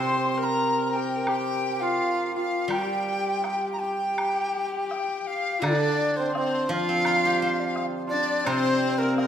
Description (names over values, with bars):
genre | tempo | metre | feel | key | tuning
chinese traditional, Chinese chamber ensemble | 84 BPM | 2/4 | rubato | G yu mode | A4 = 440 Hz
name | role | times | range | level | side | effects
bright large dizi | melody | 0.0-9.3 s | Bb4 to C6 | -28 LUFS | equal | none
bright horsehead fiddle | second line | 0.0-9.3 s | Bb3 to C5 | -30 LUFS | left 2 dB | none
dizi | second line | 0.0-9.3 s | Bb4 to C6 | -31 LUFS | left 6 dB | none
hammered dulcimer | second line | 0.0-9.3 s | Bb3 to D5 | -31 LUFS | right 4 dB | none
steel-string zither | accompaniment | 0.0-9.3 s | C3 to C5 | -30 LUFS | right 1 dB | none
woodblock | percussion | 1.3-9.3 s | none | -36 LUFS | equal | none
room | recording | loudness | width
moderate concert hall reverb, RT60 2.0 s | minimal, uncompressed stereo recording | -23 LUFS | side -9 dB against mid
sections
0.0-4.2 A section; 4.2-9.3 B section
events
none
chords
none